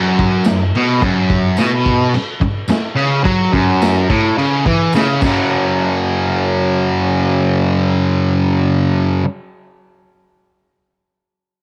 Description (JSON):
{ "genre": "garage rock duo or trio", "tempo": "108 BPM", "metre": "4/4", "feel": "straight", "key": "unclear", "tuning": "A4 = 440 Hz", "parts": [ { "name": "fuzz guitar", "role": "riff", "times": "0.0-9.2 s", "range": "F#2 to F#3", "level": "-16 LUFS", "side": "equal", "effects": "distortion, cassette tape" }, { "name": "vintage drum kit", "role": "drums", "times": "0.2-5.4 s", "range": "crash cymbal, kick drum, snare drum", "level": "-22 LUFS", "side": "equal", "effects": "cassette tape" }, { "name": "tambourine", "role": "percussion", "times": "0.4-5.7 s", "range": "none", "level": "-38 LUFS", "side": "equal", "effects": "none" } ], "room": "light reverb, small room reverb", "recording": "home recording on cassette", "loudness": "-15 LUFS", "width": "mono", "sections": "0.0-5.5 A section; 5.5-7.7 B section", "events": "drum fill 5.2", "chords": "0.0 F#5", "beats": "0.47 | 1.03 1.58 2.14 2.70 | 3.25 3.81 4.37 4.93 | 5.49 6.04 6.60 7.16" }